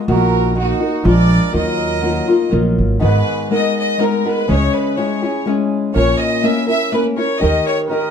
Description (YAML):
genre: mexican folk, mariachi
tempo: 122 BPM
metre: 3/4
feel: straight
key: Eb harmonic minor, G# harmonic minor from 3.0 s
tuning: A4 = 440 Hz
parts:
  - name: flamenco guitar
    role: accompaniment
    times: 0.0-8.1 s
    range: G#2 to A#4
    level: -17 LUFS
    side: left 2 dB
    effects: none
  - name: clear chamber violin section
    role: melody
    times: 0.1-8.1 s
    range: Gb4 to E5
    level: -20 LUFS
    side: equal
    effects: none
  - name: clear trumpet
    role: second line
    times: 0.1-2.5, 7.9-8.1 s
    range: Eb4 to Bb4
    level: -26 LUFS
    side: right 4 dB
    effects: none
  - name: upright bass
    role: bass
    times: 0.1-7.6 s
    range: Ab1 to Eb2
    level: -16 LUFS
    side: right 1 dB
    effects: none
room: moderate studio reverb, RT60 0.6 s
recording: dark, warm production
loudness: -14 LUFS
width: side -7 dB against mid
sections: 0.0-3.0 A section; 3.0-8.1 B section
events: none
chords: 0.1 Ebm/Bb; 1.1 Bb7; 1.6 Ebmadd9; 3.0 G#madd9; 4.5 C#m; 6.0 A#dim; 7.4 D#